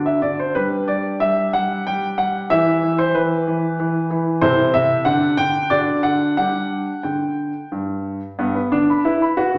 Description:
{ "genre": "classical-period piano sonatina", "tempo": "92 BPM", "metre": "3/4", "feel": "rubato", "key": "G major", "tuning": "A4 = 440 Hz", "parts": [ { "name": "clear baby grand piano", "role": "solo", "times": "0.0-9.6 s", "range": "G2 to B5", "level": "-20 LUFS", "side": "equal", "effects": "none" } ], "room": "wet recital hall reverb, RT60 1.2 s", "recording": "none", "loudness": "-20 LUFS", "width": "mono", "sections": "0.0-8.4 A section; 8.4-9.6 B section", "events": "none", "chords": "0.0 D; 0.6 G5; 2.5 Em; 4.4 Am/C; 5.1 G5/D; 5.7 D; 6.4 G5; 8.4 G", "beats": "| 0.55 1.20 1.86 | 2.51 3.15 3.79 | 4.42 5.06 5.71 | 6.38 7.05 7.73 | 8.40 9.06" }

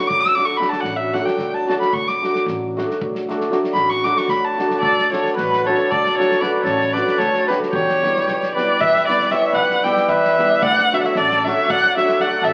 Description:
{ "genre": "balkan folk, Balkan wedding band", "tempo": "228 BPM (eighths)", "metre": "11/8", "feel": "straight", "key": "D major", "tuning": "A4 = 440 Hz", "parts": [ { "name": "dark violin", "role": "melody", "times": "0.0-12.5 s", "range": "B4 to E6", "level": "-20 LUFS", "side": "equal", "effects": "none" }, { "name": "hammered dulcimer", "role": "accompaniment", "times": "0.0-12.5 s", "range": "F#3 to G4", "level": "-24 LUFS", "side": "equal", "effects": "none" }, { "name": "upright bass", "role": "bass", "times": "0.1-12.5 s", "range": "A1 to E2", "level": "-34 LUFS", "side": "equal", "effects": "none" }, { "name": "natural country drum kit", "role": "percussion", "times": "0.1-12.5 s", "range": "kick drum, snare drum", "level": "-36 LUFS", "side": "equal", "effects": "none" }, { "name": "mellow accordion", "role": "second line", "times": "4.8-12.5 s", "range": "F#4 to E5", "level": "-25 LUFS", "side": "equal", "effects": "none" } ], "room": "wet large studio reverb, RT60 1.5 s", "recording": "very old 78 rpm record, vinyl crackle", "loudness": "-18 LUFS", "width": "mono", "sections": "0.0-4.8 A section; 4.8-12.5 B section", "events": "violin solo 0.0-4.8", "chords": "0.0 D; 7.7 Em; 10.6 D", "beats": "0.06 0.33 0.59 0.86 1.12 1.39 1.65 | 1.92 2.18 2.45 2.71 2.98 3.24 3.50 3.77 4.03 4.30 4.56 | 4.83 5.09 5.35 5.62 5.88 6.14 6.41 6.67 6.93 7.20 7.46 | 7.72 7.99 8.25 8.51 8.78 9.04 9.30 9.56 9.83 10.09 10.35 | 10.62 10.88 11.14 11.40 11.67 11.93 12.19 12.45" }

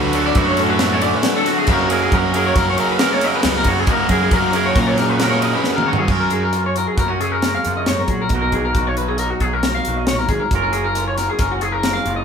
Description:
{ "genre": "math rock and midwest emo", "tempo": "136 BPM", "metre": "5/4", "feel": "straight", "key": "F# major", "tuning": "A4 = 440 Hz", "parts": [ { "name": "twangy electric guitar", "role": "accompaniment", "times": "0.0-12.2 s", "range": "F#2 to C#5", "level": "-22 LUFS", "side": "right 5 dB", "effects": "spring reverb" }, { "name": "electric guitar through a small old amp", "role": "arpeggios", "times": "0.0-12.2 s", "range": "F#4 to E#5", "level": "-21 LUFS", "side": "left 4 dB", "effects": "none" }, { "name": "raw garage guitar", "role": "riff", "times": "0.0-6.1 s", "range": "F#2 to D4", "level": "-20 LUFS", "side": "right 1 dB", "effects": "overdrive" }, { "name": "fuzz picked electric bass", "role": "bass", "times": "0.0-12.2 s", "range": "F#1 to F#3", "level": "-23 LUFS", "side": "left 1 dB", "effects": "overdrive" }, { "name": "crisp fusion drum kit", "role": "drums", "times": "0.1-12.2 s", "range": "crash cymbal, hi-hat, kick drum, ride cymbal, snare drum, toms", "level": "-21 LUFS", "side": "equal", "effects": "none" } ], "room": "moderate large studio reverb, RT60 1.0 s", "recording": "band playing live in one room", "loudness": "-15 LUFS", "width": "side -6 dB against mid", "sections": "0.0-6.1 A section; 6.1-12.2 B section", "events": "drum fill 5.7-6.1", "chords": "0.0 Dmaj9; 1.7 F#69; 6.1 F#maj7; 8.3 Bmaj7; 10.5 F#maj7", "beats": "0.36 0.81 1.25 | 1.69 2.13 2.57 3.01 3.45 | 3.89 4.33 4.78 5.22 5.66 | 6.10 6.54 6.98 7.43 7.87 | 8.31 8.75 9.20 9.64 10.08 | 10.52 10.96 11.41 11.85" }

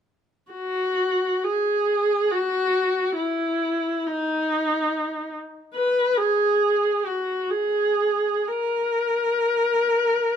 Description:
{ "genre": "classical, free, expressive piece for unaccompanied viola", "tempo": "free time", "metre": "none", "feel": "none", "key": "unclear", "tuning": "A4 = 442 Hz", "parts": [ { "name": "rich viola", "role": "solo", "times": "0.5-10.4 s", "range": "D#4 to B4", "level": "-21 LUFS", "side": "equal", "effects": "none" } ], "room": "light reverb", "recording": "close, detailed microphones", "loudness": "-21 LUFS", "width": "side -8 dB against mid", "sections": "0.5-10.4 A section", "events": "none", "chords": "none", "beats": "free time" }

